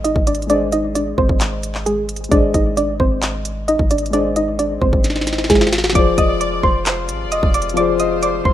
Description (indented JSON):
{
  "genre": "hip hop, trap",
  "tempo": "132 BPM",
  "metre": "4/4",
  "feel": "half-time",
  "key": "unclear",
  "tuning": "A4 = 440 Hz",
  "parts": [
    { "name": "soft round pluck", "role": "melody", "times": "0.0-8.5 s", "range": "Ab3 to Eb6", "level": "-18 LUFS", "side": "right 1 dB", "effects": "chorus, low-pass filter, ping-pong delay" },
    { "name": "dark concert grand piano", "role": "accompaniment", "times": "0.0-8.5 s", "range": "F3 to Eb5", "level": "-23 LUFS", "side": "left 4 dB", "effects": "low-pass filter" },
    { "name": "warm 808-style bass", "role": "bass", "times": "0.0-8.5 s", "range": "F1 to Ab1", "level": "-25 LUFS", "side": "equal", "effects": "none" },
    { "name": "trap drum kit", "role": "drums", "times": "0.0-8.5 s", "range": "handclaps, hi-hat, kick drum, snare drum", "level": "-18 LUFS", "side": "equal", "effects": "none" },
    { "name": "swell", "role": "sound effects", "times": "4.6-6.0 s", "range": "none", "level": "-30 LUFS", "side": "left 2 dB", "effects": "none" },
    { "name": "warm chamber violin section", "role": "second line", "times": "6.0-8.5 s", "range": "C5 to D5", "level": "-26 LUFS", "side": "equal", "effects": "ping-pong delay" },
    { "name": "mellow brass ensemble", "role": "sustained chords", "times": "6.0-8.5 s", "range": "C3 to F4", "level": "-30 LUFS", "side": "left 3 dB", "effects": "stereo widening" }
  ],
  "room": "studio ambience",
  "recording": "rough home demo mix",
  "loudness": "-15 LUFS",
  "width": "side -12 dB against mid",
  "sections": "0.0-6.0 A section; 6.0-8.5 B section",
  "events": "swell 4.6-6.0; drum fill 5.0-6.0",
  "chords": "0.0 Ab; 6.0 Fm"
}